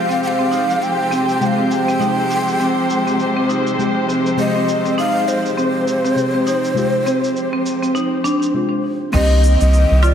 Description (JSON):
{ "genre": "organic downtempo", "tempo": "101 BPM", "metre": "4/4", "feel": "swing 58% on 16ths", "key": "unclear", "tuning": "A4 = 440 Hz", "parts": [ { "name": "breathy mellow ney", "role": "melody", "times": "0.0-10.1 s", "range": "C5 to Ab5", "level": "-20 LUFS", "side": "equal", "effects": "analog delay" }, { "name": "deep mellow chord stab", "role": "accompaniment", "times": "0.0-10.1 s", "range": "C3 to G4", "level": "-25 LUFS", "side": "left 2 dB", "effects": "chorus, phaser, sidechain pumping, tape echo" }, { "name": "muted studio string section", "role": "sustained chords", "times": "0.0-10.1 s", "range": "C3 to C5", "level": "-22 LUFS", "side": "equal", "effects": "sidechain pumping" }, { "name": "drifting glass-harmonics texture", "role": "texture", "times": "0.0-10.1 s", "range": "C5 to Eb7", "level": "-32 LUFS", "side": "right 1 dB", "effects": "none" }, { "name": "marimba with hard mallets", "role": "arpeggios", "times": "0.1-10.1 s", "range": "C4 to F4", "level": "-20 LUFS", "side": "equal", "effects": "tape echo" }, { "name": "electronic shaker, crash cymbal and woodblock", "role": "drums", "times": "0.1-10.1 s", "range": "none", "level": "-32 LUFS", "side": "right 1 dB", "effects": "low-pass filter on perc, low-pass filter on cymbals" }, { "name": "round analog bass", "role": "bass", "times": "9.1-10.1 s", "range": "C2", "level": "-12 LUFS", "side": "equal", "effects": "sidechain pumping" }, { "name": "electronic kick drum", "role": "drums", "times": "9.1-9.3 s", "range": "none", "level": "-21 LUFS", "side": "equal", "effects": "none" } ], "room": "wet lush hall reverb, RT60 2.2 s", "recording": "dreamy mix soaked in reverb", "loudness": "-15 LUFS", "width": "side -8 dB against mid", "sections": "0.0-9.1 A section; 9.1-10.1 B section", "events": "break 8.5-9.1", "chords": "0.0 Fmadd9/C; 9.1 Cm7", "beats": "0.23 0.82 1.41 | 2.01 2.60 3.20 3.79 | 4.38 4.98 5.57 6.17 | 6.76 7.36 7.95 8.54 | 9.14 9.73" }